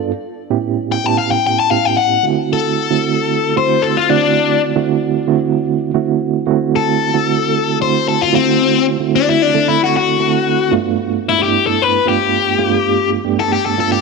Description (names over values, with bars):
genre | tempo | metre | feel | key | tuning
blues | 113 BPM | 4/4 | straight | D mixolydian | A4 = 441 Hz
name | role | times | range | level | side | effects
mellow reed electric piano | accompaniment | 0.0-14.0 s | G2 to A4 | -16 LUFS | right 10 dB | fast tremolo
overdriven electric guitar | melody | 0.9-14.0 s | C4 to A5 | -15 LUFS | left 10 dB | phaser
room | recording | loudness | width
moderate plate reverb, RT60 2.4 s | 1960s-style stereo with parts hard left and right | -13 LUFS | side -3 dB against mid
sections
0.0-2.2 A section; 2.2-14.0 B section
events
overdriven electric guitar solo 2.2-14.0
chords
0.1 A9; 2.2 D9; 10.7 G9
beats
| 0.11 0.64 1.17 1.71 | 2.23 2.77 3.30 3.83 | 4.36 4.89 5.42 5.95 | 6.48 7.01 7.54 8.07 | 8.60 9.13 9.66 10.20 | 10.73 11.26 11.79 12.32 | 12.85 13.38 13.91